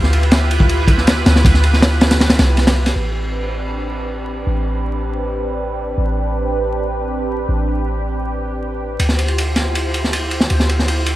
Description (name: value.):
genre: drum and bass, jungle.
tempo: 159 BPM.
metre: 4/4.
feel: straight.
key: A minor.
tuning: A4 = 440 Hz.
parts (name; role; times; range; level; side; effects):
lush unison pad; sustained chords; 0.0-11.2 s; C4 to C5; -22 LUFS; right 2 dB; chorus, phaser.
warm 808-style bass; bass; 0.0-11.2 s; A1 to D2; -18 LUFS; equal; none.
crunchy breakbeat drum kit; drums; 0.0-3.0, 9.0-11.2 s; kick drum, ride cymbal, snare drum; -16 LUFS; equal; none.
room: light reverb, studio ambience.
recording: vinyl crackle.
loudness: -14 LUFS.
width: side -15 dB against mid.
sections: 0.0-3.0 A section; 3.0-11.2 B section.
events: drop 0.0-3.0.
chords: 0.0 Dm11; 3.0 Am11; 9.0 Dm11.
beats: 0.32 0.69 1.07 | 1.45 1.83 2.20 2.58 | 2.96 3.34 3.71 4.09 | 4.47 4.85 5.22 5.60 | 5.98 6.36 6.73 7.11 | 7.49 7.87 8.24 8.62 | 9.00 9.37 9.75 10.13 | 10.51 10.88.